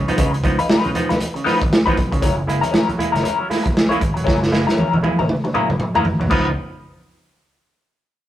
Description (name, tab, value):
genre	funk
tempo	117 BPM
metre	4/4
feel	swing 60% on 16ths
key	unclear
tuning	A4 = 440 Hz
part	clav	stabs	0.0-6.5 s	Db3 to Fb4	-23 LUFS	right 2 dB	auto-wah
part	vintage slap bass	bass	0.0-6.5 s	Fb1 to Db2	-25 LUFS	equal	none
part	clean electric guitar	accompaniment	0.1-6.5 s	Ab3 to Db5	-22 LUFS	left 4 dB	wah
part	crunchy breakbeat drum kit	drums	0.1-6.5 s	crash cymbal, hi-hat, kick drum, snare drum, toms	-19 LUFS	equal	none
part	congas	percussion	0.2-6.5 s	none	-33 LUFS	right 2 dB	none
room	moderate stone room reverb, RT60 1.1 s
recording	rough rehearsal-room recording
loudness	-16 LUFS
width	side -12 dB against mid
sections	0.0-6.3 A section; 6.3-8.3 B section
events	drum fill 4.3-6.3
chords	0.0 Db9; 2.2 Gb9; 6.3 Db9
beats	| 0.18 0.69 1.20 1.71 | 2.22 2.73 3.25 3.76 | 4.27 4.78 5.29 5.80 | 6.31